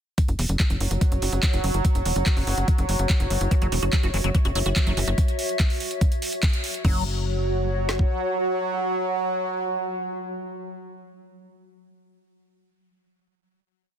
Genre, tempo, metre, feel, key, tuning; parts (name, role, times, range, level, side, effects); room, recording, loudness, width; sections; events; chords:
psychedelic trance; 144 BPM; 4/4; straight; A4 = 440 Hz
bubbling stepped-filter texture; sustained chords; 0.6-10.8 s; F#3; -30 LUFS; right 3 dB; chorus, built-in reverb, sidechain pumping
garage drum kit; drums; 0.2-8.1 s; kick drum, snare drum; -21 LUFS; equal; overdrive
garage drum kit; drums; 0.2-6.9 s; crash cymbal, handclaps, hi-hat; -30 LUFS; right 1 dB; overdrive
warbly tape-like pad; texture; 1.3-10.9 s; F#4 to F#5; -31 LUFS; left 2 dB; chorus, built-in reverb, sidechain pumping
tight sequencer bass; bass; 0.3-8.1 s; E1 to F#1; -25 LUFS; equal
liquid acid bass; riff; 3.5-7.0 s; E3 to F#4; -31 LUFS; moving between left 4 dB and right 2 dB; phaser, auto-pan, sidechain pumping, dub echo
digital ambience; dense, heavily limited modern master; -21 LUFS; side -9 dB against mid
0.2-6.8 groove; 6.8-10.2 final chord
band accent 6.4
0.2 F#5